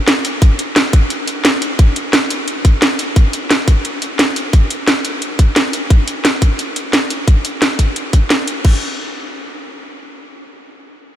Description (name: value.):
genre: liquid drum and bass.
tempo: 175 BPM.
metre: 4/4.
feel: swing 54% on 16ths.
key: none.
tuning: none.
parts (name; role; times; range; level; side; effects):
drum and bass drum kit; drums; 0.1-8.7 s; crash cymbal, hi-hat, snare drum; -15 LUFS; equal; none.
electronic kick drum; drums; 0.4-8.7 s; none; -10 LUFS; equal; none.
room: moderate huge ambient reverb, RT60 7.7 s.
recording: dreamy mix soaked in reverb.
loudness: -12 LUFS.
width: side -11 dB against mid.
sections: 0.0-8.6 A section; 8.6-11.2 B section.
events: none.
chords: none.